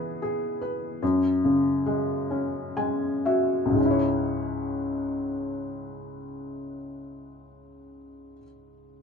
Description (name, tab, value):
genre	pop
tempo	38-52 BPM (dotted quarters)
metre	6/8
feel	straight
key	C# minor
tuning	A4 = 440 Hz
part	felt-muted upright piano	accompaniment	0.0-9.0 s	C#2 to G#5	-25 LUFS	left 1 dB	none
room	wet small room reverb, RT60 0.5 s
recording	band playing live in one room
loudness	-23 LUFS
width	side -6 dB against mid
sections	0.0-3.8 A section; 3.8-6.9 B section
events	slowing down 0.0-3.8; felt piano fill 2.3-3.8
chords	0.0 E; 1.0 F#sus2; 3.8 C#m